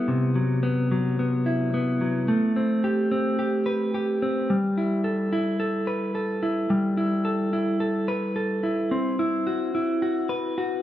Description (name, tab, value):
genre	indie pop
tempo	109 BPM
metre	4/4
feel	straight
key	G major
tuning	A4 = 440 Hz
part	clean electric guitar	solo	0.0-10.8 s	C3 to B4	-22 LUFS	equal	warbly pitch drift
room	wet large studio reverb, RT60 0.9 s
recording	band playing live in one room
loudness	-22 LUFS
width	side -12 dB against mid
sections	0.0-10.8 A section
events	none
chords	0.1 Cmaj7#11; 2.3 Am9; 4.5 G69; 8.9 Cmaj7#11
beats	| 0.08 0.63 1.19 1.74 | 2.29 2.84 3.39 3.94 | 4.50 5.05 5.60 6.15 | 6.71 7.26 7.81 8.36 | 8.91 9.47 10.02 10.57